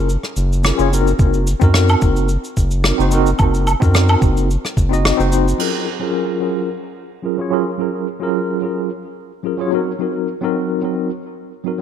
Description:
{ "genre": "sunset chillout", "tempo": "109 BPM", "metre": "4/4", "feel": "swing 54% on 16ths", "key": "Gb lydian", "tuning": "A4 = 436 Hz", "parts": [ { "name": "tine electric piano", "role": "accompaniment", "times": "0.0-11.8 s", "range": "Gb3 to Eb5", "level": "-19 LUFS", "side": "moving between left 5 dB and right 6 dB", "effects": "medium stereo tremolo, auto-pan, low-pass filter, digital delay" }, { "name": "round analog bass", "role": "bass", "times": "0.0-5.5 s", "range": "Gb1 to Gb2", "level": "-16 LUFS", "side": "equal", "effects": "none" }, { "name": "vintage brush drum kit", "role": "drums", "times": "0.1-5.7 s", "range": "cabasa, crash cymbal, rim click, woodblock", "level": "-22 LUFS", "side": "right 1 dB", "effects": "none" }, { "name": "electronic kick drum", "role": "drums", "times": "1.2-4.9 s", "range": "none", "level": "-15 LUFS", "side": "equal", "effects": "none" } ], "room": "light reverb, small room ambience", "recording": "none", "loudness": "-15 LUFS", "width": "side -9 dB against mid", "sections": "0.0-5.6 A section; 5.6-11.8 B section", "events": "kick drops out 5.0-5.6", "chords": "0.0 Gbmaj9; 0.9 Ebm6/Gb; 5.6 Gbmaj9; 9.7 Ebm6/Gb" }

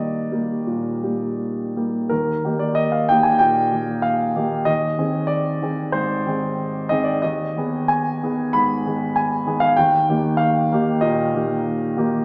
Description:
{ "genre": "classical, romantic character piece for solo piano", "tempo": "94 BPM", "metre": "4/4", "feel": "uneven beats, rubato", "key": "Eb major", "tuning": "A4 = 440 Hz", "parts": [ { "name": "warm baby grand piano", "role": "solo", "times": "0.0-12.2 s", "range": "Eb2 to Cb6", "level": "-21 LUFS", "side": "equal", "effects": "none" } ], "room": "wet recital hall reverb, RT60 1.7 s", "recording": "recorded in a church or concert hall, small speaker sound", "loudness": "-21 LUFS", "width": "mono", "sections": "0.0-2.1 A section; 2.1-12.2 A section", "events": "none", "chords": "0.0 Eb; 4.7 Ab/Eb; 7.2 Abm/Eb; 9.8 Eb" }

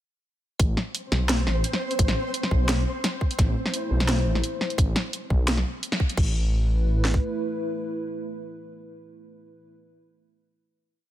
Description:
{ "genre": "half-time drum and bass", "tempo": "172 BPM", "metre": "4/4", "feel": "half-time", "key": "A minor", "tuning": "A4 = 440 Hz", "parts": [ { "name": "dark detuned saw bass", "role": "bass", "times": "0.6-7.2 s", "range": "A1 to B1", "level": "-24 LUFS", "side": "equal", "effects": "tube saturation" }, { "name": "drum and bass drum kit", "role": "drums", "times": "0.6-7.2 s", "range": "kick drum, snare drum", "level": "-22 LUFS", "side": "equal", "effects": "none" }, { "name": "drum and bass drum kit", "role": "drums", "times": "0.6-6.2 s", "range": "crash cymbal, hi-hat, snare drum", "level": "-27 LUFS", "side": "equal", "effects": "none" }, { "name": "flickering grainy texture", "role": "texture", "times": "1.0-4.8 s", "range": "C4 to C5", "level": "-33 LUFS", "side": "equal", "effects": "built-in reverb" }, { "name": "dark analog pad", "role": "sustained chords", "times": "3.6-9.7 s", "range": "A3 to C5", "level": "-32 LUFS", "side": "right 1 dB", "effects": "chorus, sidechain pumping" } ], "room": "light reverb", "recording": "none", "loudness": "-22 LUFS", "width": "side -13 dB against mid", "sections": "0.6-6.2 drop; 6.2-9.0 final chord", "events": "drop 0.6-6.2; band accent 5.9", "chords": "0.6 Amadd9; 6.2 Asus2" }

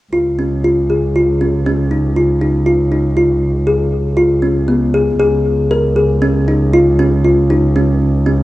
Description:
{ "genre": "contemporary instrumental, chamber music in an uneven meter", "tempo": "118 BPM", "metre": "5/4", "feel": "straight", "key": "Db major", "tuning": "A4 = 439 Hz", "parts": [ { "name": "kalimba", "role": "arpeggios", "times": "0.1-8.4 s", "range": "Cb4 to Bb4", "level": "-13 LUFS", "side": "equal", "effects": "analog delay" }, { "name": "dark double bass", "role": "bass", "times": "0.1-8.4 s", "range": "Db2", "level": "-15 LUFS", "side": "equal", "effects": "none" } ], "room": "moderate spring reverb, RT60 2.8 s", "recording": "worn, warbling old tape, cassette tape, warbly pitch drift", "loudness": "-11 LUFS", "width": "side -16 dB against mid", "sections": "0.1-5.2 A section; 5.2-8.4 B section", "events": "none", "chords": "0.1 Db" }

